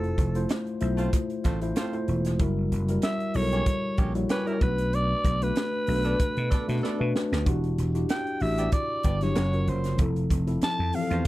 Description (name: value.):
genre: polished 1980s jazz-funk pop.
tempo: 95 BPM.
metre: 4/4.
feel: swing 54% on 16ths.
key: unclear.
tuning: A4 = 440 Hz.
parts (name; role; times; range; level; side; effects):
raspy alto saxophone; melody; 0.0-11.3 s; A4 to A5; -30 LUFS; equal; none.
tine electric piano; accompaniment; 0.0-11.3 s; E3 to C#5; -30 LUFS; left 2 dB; wide subtle chorus.
vintage slap bass; bass; 0.0-11.2 s; E1 to B2; -27 LUFS; equal; none.
crisp fusion drum kit; drums; 0.0-11.3 s; hi-hat, kick drum, snare drum; -28 LUFS; equal; none.
warm horn section; second line; 1.0-11.2 s; A3 to D5; -35 LUFS; right 3 dB; none.
room: little or no reverb.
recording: none.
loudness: -24 LUFS.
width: side -17 dB against mid.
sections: 0.0-11.3 A section.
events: drum fill 6.8-7.5.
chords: 0.0 Fmaj7; 2.4 F#7b9; 4.6 Bm7; 7.5 Em9; 9.4 F#maj7; 10.0 Fmaj7.